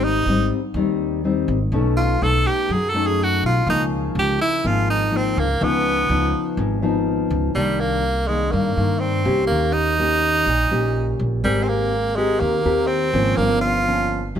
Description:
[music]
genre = bossa nova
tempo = 124 BPM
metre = 4/4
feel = straight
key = C minor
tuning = A4 = 440 Hz
[part]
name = edgy tenor saxophone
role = melody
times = 0.0-14.3 s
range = G3 to A4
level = -21 LUFS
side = right 2 dB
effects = none
[part]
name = nylon-string guitar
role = accompaniment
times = 0.0-14.4 s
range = G2 to Bb4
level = -22 LUFS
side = left 3 dB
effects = none
[part]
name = upright bass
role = bass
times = 0.0-14.4 s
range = G1 to G2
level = -23 LUFS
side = right 1 dB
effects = none
[sound]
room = moderate large studio reverb, RT60 1.1 s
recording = none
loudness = -17 LUFS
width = side -9 dB against mid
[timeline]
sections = 0.0-7.5 A section; 7.5-14.4 B section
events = tenor saxophone solo 0.0-7.5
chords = 0.0 Abmaj7; 1.7 B9; 3.7 Db69; 5.6 Db9; 7.5 Cm9; 9.5 Eb7; 11.4 Abmaj9; 13.4 Gm7b5

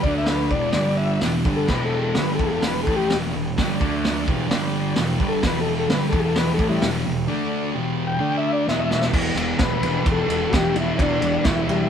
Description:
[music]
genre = garage rock duo or trio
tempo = 129 BPM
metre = 4/4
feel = straight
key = E minor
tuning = A4 = 439 Hz
[part]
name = overdriven combo organ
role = melody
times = 0.0-11.9 s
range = G3 to G5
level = -24 LUFS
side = left 3 dB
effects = none
[part]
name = combo organ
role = sustained chords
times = 0.0-11.9 s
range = D4 to D5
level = -36 LUFS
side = right 2 dB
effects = none
[part]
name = thick fuzz guitar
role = riff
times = 0.0-11.9 s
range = E2 to D4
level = -23 LUFS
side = equal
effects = distortion
[part]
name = fuzz picked electric bass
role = bass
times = 0.0-11.8 s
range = E1 to D2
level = -28 LUFS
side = equal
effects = overdrive, tube saturation
[part]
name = vintage drum kit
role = drums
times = 0.0-11.8 s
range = crash cymbal, hi-hat, kick drum, ride cymbal, snare drum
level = -24 LUFS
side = equal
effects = none
[sound]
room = moderate stone room reverb, RT60 1.2 s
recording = band playing live in one room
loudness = -19 LUFS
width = side -8 dB against mid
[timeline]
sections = 0.0-9.1 A section; 9.1-11.9 B section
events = transistor combo organ solo 0.0-9.1; drum fill 8.7-9.1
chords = 0.0 D5; 0.5 Em; 0.8 G5; 1.2 Em; 3.8 D5; 4.3 Em; 4.5 G5; 5.0 Em; 7.3 D5; 7.7 Em; 8.2 D5; 8.7 Em

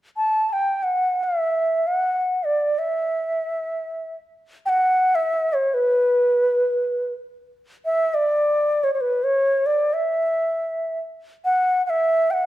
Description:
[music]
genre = indian classical, Hindustani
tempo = free time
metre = none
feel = none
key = E raga kafi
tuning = A4 = 436 Hz
[part]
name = bansuri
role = solo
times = 0.2-12.5 s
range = B4 to A5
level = -19 LUFS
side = equal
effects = none
[sound]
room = moderate recital hall reverb, RT60 1.3 s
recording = none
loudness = -19 LUFS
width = side -14 dB against mid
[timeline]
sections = 0.0-12.5 A section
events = none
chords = none

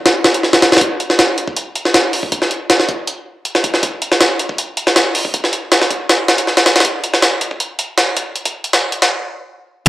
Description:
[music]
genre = drum and bass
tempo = 159 BPM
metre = 4/4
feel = straight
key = none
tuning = none
[part]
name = jungle sampler-style drum kit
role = drums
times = 0.1-9.1 s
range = hi-hat, kick drum, snare drum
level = -12 LUFS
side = equal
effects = high-pass filter on snare, high-pass filter on hats, high-pass filter on kick, high-pass filter on cymbals, high-pass filter on room
[sound]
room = moderate plate reverb, RT60 1.4 s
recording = dry, gritty hardware recording, transformer saturation, cassette tape, high-pass filter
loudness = -12 LUFS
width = side -15 dB against mid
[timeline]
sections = 0.0-9.9 A section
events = build-up 0.0-9.9; filter sweep 0.0-9.9; stop 9.1-9.9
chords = none

